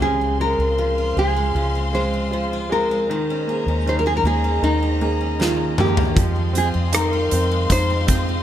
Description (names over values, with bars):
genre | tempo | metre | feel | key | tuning
pop ballad | 78 BPM | 4/4 | straight | unclear | A4 = 436 Hz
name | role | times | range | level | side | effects
nylon-string guitar | melody | 0.0-8.4 s | Eb4 to C5 | -22 LUFS | equal | none
clear grand piano | accompaniment | 0.0-8.4 s | Db3 to F4 | -26 LUFS | right 2 dB | none
warm studio string section | sustained chords | 0.0-8.4 s | Ab3 to C6 | -29 LUFS | left 4 dB | none
picked steel-string acoustic guitar | arpeggios | 0.0-8.4 s | F2 to Ab4 | -29 LUFS | left 1 dB | none
vintage muted fingered electric bass | bass | 0.0-8.4 s | Db2 to F2 | -22 LUFS | equal | none
huge arena drum kit | drums | 5.4-8.3 s | hi-hat, kick drum, rim click, snare drum, toms | -22 LUFS | equal | none
room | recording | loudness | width
studio ambience | none | -17 LUFS | side -11 dB against mid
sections
0.0-8.4 A section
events
drum fill 5.4-6.2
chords
0.0 Dbmaj7; 3.1 Eb7sus4; 6.2 Fm7